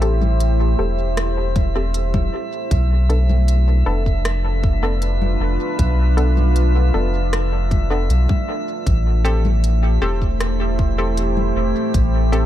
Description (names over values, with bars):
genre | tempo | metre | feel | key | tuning
ambient dub | 78 BPM | 4/4 | straight | A minor | A4 = 445 Hz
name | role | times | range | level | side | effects
deep dark ambient pad | sustained chords | 0.0-12.5 s | A3 to C5 | -25 LUFS | right 1 dB | chorus, built-in reverb
filtered dub chord stab | stabs | 0.0-12.5 s | B3 to A4 | -28 LUFS | left 2 dB | chorus, dub echo
round analog bass | bass | 0.0-12.5 s | E1 to B1 | -17 LUFS | equal | none
organic electronic drum kit | drums | 0.0-12.5 s | congas, hi-hat, rim click | -29 LUFS | left 3 dB | dub echo
drifting glass-harmonics texture | texture | 0.0-12.5 s | E5 | -30 LUFS | right 4 dB | chorus, built-in reverb
electronic kick drum | drums | 1.6-12.1 s | none | -20 LUFS | equal | none
room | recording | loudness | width
little or no reverb | echo-heavy mix | -16 LUFS | side -12 dB against mid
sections
0.0-12.5 A section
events
none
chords
0.0 Am7; 2.7 Bm7b5; 8.9 Am7